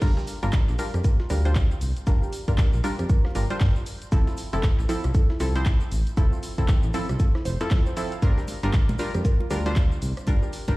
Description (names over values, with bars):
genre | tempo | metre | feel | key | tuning
deep house | 117 BPM | 4/4 | swing 60% on 16ths | G dorian | A4 = 440 Hz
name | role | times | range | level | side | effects
warbly dusty pluck | arpeggios | 0.0-10.7 s | E4 to F5 | -37 LUFS | right 3 dB | chorus, phaser, sidechain pumping, digital delay
filtered dub chord stab | stabs | 0.0-10.8 s | F3 to C5 | -30 LUFS | equal | chorus, sidechain pumping, dub echo
smooth synth bass | bass | 0.0-10.8 s | F1 to G2 | -26 LUFS | equal | sidechain pumping
dusty soul sampler-style drum kit | drums | 0.0-10.8 s | hi-hat, shaker, snare drum | -47 LUFS | equal | none
electronic kick drum | drums | 0.0-10.8 s | none | -20 LUFS | equal | none
punchy analog drum machine | drums | 0.0-10.8 s | crash cymbal, handclaps, hi-hat, rim click | -38 LUFS | equal | none
tube shaker | percussion | 0.0-10.8 s | none | -48 LUFS | left 2 dB | none
congas | percussion | 8.5-10.8 s | none | -36 LUFS | right 1 dB | sidechain pumping on perc
room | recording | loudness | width
digital ambience | played on a big sound system in a bare room, large studio reverb, vinyl crackle | -21 LUFS | side -20 dB against mid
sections
0.0-10.8 A section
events
drop 0.0-10.8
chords
0.0 Gm7; 4.1 Fmaj7; 8.2 Gm7